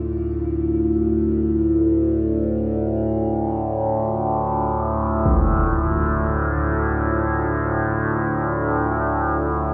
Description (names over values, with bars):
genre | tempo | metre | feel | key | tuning
dark ambient drone | free time | none | none | D minor | A4 = 438 Hz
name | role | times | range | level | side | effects
deep dark ambient pad | sustained chords | 0.0-9.7 s | D4 to E5 | -33 LUFS | equal | chorus, built-in reverb, shimmer reverb
overtone-sweeping drone | drone | 0.0-9.7 s | D2 to A2 | -22 LUFS | equal | chorus, built-in reverb
quartz singing bowl | texture | 0.0-9.7 s | F4 | -33 LUFS | equal | none
impact | percussion | 5.3-5.5 s | none | -28 LUFS | equal | low-pass filter on sfx
room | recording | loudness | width
wet cathedral reverb, RT60 5.2 s | in a vast, echoing space | -21 LUFS | mono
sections
0.0-9.7 A section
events
fade-in on ambient pad 0.0-9.7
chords
0.0 Dmadd9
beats
free time